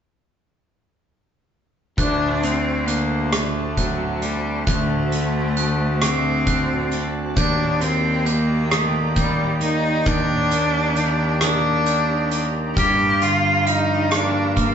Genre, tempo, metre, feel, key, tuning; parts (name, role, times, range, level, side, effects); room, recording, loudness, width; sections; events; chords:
post-rock; 44 BPM (dotted quarters); 6/8; straight; A4 = 440 Hz
bright cello; melody; 2.0-14.7 s; F#3 to G4; -22 LUFS; equal
soft additive organ-like pad; sustained chords; 2.3-14.7 s; F#4 to Bb5; -31 LUFS; right 2 dB; ensemble chorus, built-in reverb, tremolo
glockenspiel with brass mallets; arpeggios; 2.0-14.7 s; D6 to G6; -29 LUFS; right 3 dB; slapback echo
twelve-string electric guitar; arpeggios; 2.0-14.7 s; G2 to D4; -28 LUFS; left 1 dB
fuzz picked electric bass; bass; 2.0-14.7 s; D2 to G2; -23 LUFS; equal; overdrive
oversized low-tuned drum kit; drums; 2.0-14.7 s; hi-hat, kick drum, rim click; -25 LUFS; equal
wet large studio reverb, RT60 0.9 s; band playing live in one room, nothing above 7.7 kHz; -18 LUFS; side -8 dB against mid
2.0-14.7 A section
2.0 D7; 7.4 Ebmaj7; 12.8 Gm7